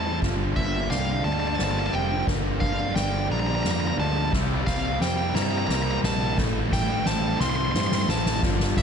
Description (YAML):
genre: post-rock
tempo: 58 BPM (dotted quarters)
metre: 6/8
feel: straight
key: G dorian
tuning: A4 = 440 Hz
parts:
  - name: biting lead guitar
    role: melody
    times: 0.0-8.8 s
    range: E5 to C6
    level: -29 LUFS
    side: equal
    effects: overdrive, tape echo
  - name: hand-pumped harmonium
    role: sustained chords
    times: 0.0-8.8 s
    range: E3 to Bb4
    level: -40 LUFS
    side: left 2 dB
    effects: none
  - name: clean electric guitar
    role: arpeggios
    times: 0.0-8.8 s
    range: G2 to G4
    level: -35 LUFS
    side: left 4 dB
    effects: none
  - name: vibraphone with soft mallets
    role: arpeggios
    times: 0.0-8.8 s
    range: F4 to E6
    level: -37 LUFS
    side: right 4 dB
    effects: tape echo
  - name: fuzz guitar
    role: riff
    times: 0.0-8.8 s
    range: G2 to G3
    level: -29 LUFS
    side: equal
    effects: distortion
  - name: fuzz fingered electric bass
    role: bass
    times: 0.0-8.8 s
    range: F1 to A2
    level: -28 LUFS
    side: equal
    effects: overdrive
  - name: soft-mallet drum kit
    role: drums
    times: 0.2-8.8 s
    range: crash cymbal, kick drum, ride cymbal, snare drum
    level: -27 LUFS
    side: equal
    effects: none
room: light reverb, small room reverb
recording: nothing above 10.4 kHz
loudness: -22 LUFS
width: side -7 dB against mid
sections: 0.0-8.8 A section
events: build-up 0.0-8.8; drum fill 0.0-8.8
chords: 0.2 Gm7; 4.3 C7; 6.4 Am7